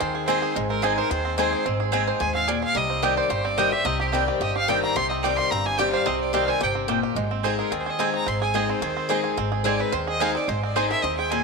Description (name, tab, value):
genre	bluegrass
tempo	218 BPM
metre	4/4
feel	straight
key	unclear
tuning	A4 = 440 Hz
part	clear fiddle	melody	0.0-11.4 s	G4 to C6	-27 LUFS	equal	none
part	picked steel-string acoustic guitar	accompaniment	0.0-11.4 s	G2 to Ab4	-26 LUFS	left 12 dB	none
part	bluegrass banjo	arpeggios	0.0-11.4 s	G3 to C5	-28 LUFS	right 12 dB	none
part	upright bass	bass	0.0-11.4 s	G1 to Eb2	-31 LUFS	equal	none
part	mandolin	stabs	0.3-11.4 s	C4 to Ab5	-29 LUFS	right 12 dB	none
part	lap resonator guitar	second line	10.8-11.4 s	Bb4 to C5	-30 LUFS	left 12 dB	none
room	moderate plate reverb, RT60 3.0 s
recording	1960s-style stereo with parts hard left and right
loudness	-21 LUFS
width	side -3 dB against mid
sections	0.0-7.2 A section; 7.2-11.4 B section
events	fiddle solo 0.0-7.2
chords	0.0 Ab; 2.8 Cm; 7.2 Ab